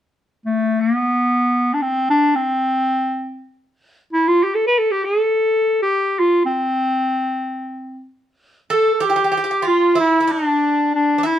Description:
turkish; free time; C makam rast; A4 = 439 Hz
clear clarinet; melody; 0.5-11.4 s; A3 to B4; -16 LUFS; equal
Greek bouzouki; second line; 8.7-11.4 s; D4 to A4; -20 LUFS; right 3 dB
light reverb; band playing live in one room; -16 LUFS; side -10 dB against mid
0.1-9.0 A section; 9.0-11.4 B section

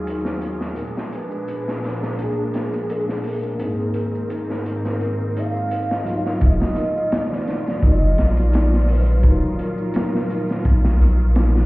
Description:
trip hop; 85 BPM; 4/4; swing 53% on 16ths; Eb harmonic minor; A4 = 441 Hz
mellow tine electric piano; accompaniment; 0.0-11.7 s; Gb3 to Ab4; -27 LUFS; equal; harmonic tremolo, tape echo
clear studio string section; sustained chords; 0.0-11.7 s; Eb2 to F4; -29 LUFS; equal
large celesta; arpeggios; 0.0-11.7 s; D4 to Eb5; -31 LUFS; left 1 dB; tape echo
wind-like tuned noise texture; texture; 0.0-11.7 s; F3 to F6; -36 LUFS; right 1 dB
crunchy breakbeat drum kit; drums; 0.1-11.7 s; hi-hat, kick drum, snare drum; -23 LUFS; equal; high-pass filter on kick, high-pass filter on hats, high-pass filter on snare, high-pass filter on room
maracas; percussion; 0.8-11.7 s; -60 LUFS; right 3 dB
pure breathy sine lead; melody; 1.1-11.0 s; Ab4 to F5; -28 LUFS; right 1 dB; lush chorus, dub echo
warm sub bass; bass; 6.4-11.7 s; Eb1 to Bb1; -16 LUFS; equal; tube saturation
light reverb, small room ambience; heard muffled through a wall, stone room reverb, EQ; -18 LUFS; side -20 dB against mid
0.0-6.4 A section; 6.4-11.7 B section
filter sweep on celesta 0.0-6.4
0.0 Ebmadd9; 0.8 Bb7; 3.6 Abadd9; 6.4 Ebmadd9

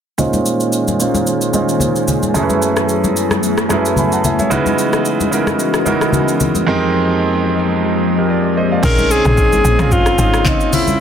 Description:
amapiano; 111 BPM; 4/4; swing 55% on 16ths; A4 = 445 Hz
clear concert grand piano; accompaniment; 0.2-11.0 s; F2 to Cb6; -16 LUFS; right 3 dB; low-pass filter
glassy FM pad; sustained chords; 0.6-11.0 s; Db3 to Eb5; -20 LUFS; left 2 dB; ensemble chorus, built-in reverb, sidechain pumping, low-pass filter
deep house drum kit; drums; 0.2-11.0 s; crash cymbal, handclaps, hi-hat, kick drum, rim click, shaker, toms; -20 LUFS; equal
congas; percussion; 0.2-11.0 s; -21 LUFS; left 3 dB
breathy alto saxophone; melody; 8.8-11.0 s; Eb4 to Bb4; -15 LUFS; left 2 dB; tape echo
woody log drum bass; bass; 8.8-11.0 s; Ab1 to Bb1; -18 LUFS; equal
light reverb, digital ambience; dense, heavily limited modern master; -12 LUFS; side -8 dB against mid
0.2-8.8 A section; 8.8-11.0 B section
filter sweep 0.2-8.8; drop 8.8-11.0
0.2 Bbm11; 2.3 Gbm11; 4.5 Dbm11; 6.7 Fm11; 8.8 Bbm11

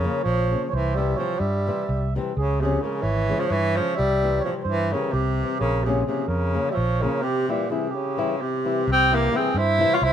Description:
balkan folk, Balkan wedding band; 258 BPM (eighths); 7/8; straight; C phrygian dominant; A4 = 441 Hz
mellow tenor saxophone; melody; 0.0-10.1 s; Bb2 to F4; -24 LUFS; equal
mellow accordion; second line; 0.0-10.1 s; G4 to E5; -29 LUFS; right 7 dB
flamenco guitar; accompaniment; 0.0-10.0 s; C3 to E4; -29 LUFS; left 5 dB
fingered electric bass; bass; 0.0-10.1 s; Ab1 to G2; -25 LUFS; equal
light reverb; close, detailed microphones; -20 LUFS; side -9 dB against mid
0.0-8.9 A section; 8.9-10.1 B section
0.0 Bbm; 0.7 C; 2.4 Db; 4.0 C; 5.6 Bbm; 7.2 C

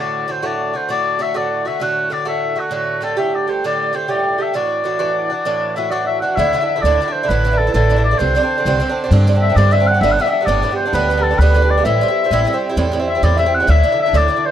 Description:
celtic folk, Celtic slide; 132 BPM (dotted quarters); 12/8; straight; D mixolydian; A4 = 443 Hz
warm oboe; melody; 0.0-14.5 s; F#4 to F#5; -18 LUFS; left 5 dB
Irish bouzouki; accompaniment; 0.0-14.5 s; G2 to G4; -19 LUFS; right 4 dB
concert harp; second line; 5.8-14.5 s; A4 to F#5; -23 LUFS; right 6 dB
upright bass; bass; 6.4-14.3 s; G1 to G2; -16 LUFS; equal
little or no reverb; dry, close 1970s-style studio recording, lossy compression artefacts; -14 LUFS; side -10 dB against mid
0.0-6.4 A section; 6.4-14.5 B section
0.0 D; 2.7 Gsus2; 4.5 Dadd9; 6.4 Dsus2; 8.2 Csus2; 10.0 Gadd9; 11.8 Am7; 13.7 Dsus2

